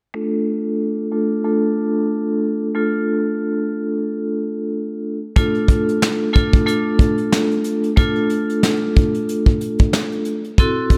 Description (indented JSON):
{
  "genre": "hip hop, boom-bap hip-hop",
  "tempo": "92 BPM",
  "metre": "4/4",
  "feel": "swing 57% on 16ths",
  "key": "D minor",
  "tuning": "A4 = 441 Hz",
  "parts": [
    { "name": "vibraphone with hard mallets", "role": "accompaniment", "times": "0.1-11.0 s", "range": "A3 to A4", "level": "-21 LUFS", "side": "equal", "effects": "cassette tape, high-pass filter, low-pass filter" },
    { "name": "soft brush drum kit", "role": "drums", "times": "5.4-11.0 s", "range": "hi-hat, kick drum, snare drum", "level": "-18 LUFS", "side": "equal", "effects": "none" }
  ],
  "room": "light reverb",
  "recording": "none",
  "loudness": "-19 LUFS",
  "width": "mono",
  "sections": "0.1-5.4 A section; 5.4-11.0 B section",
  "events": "filter sweep on vibraphone 0.1-5.4",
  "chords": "0.1 Dm"
}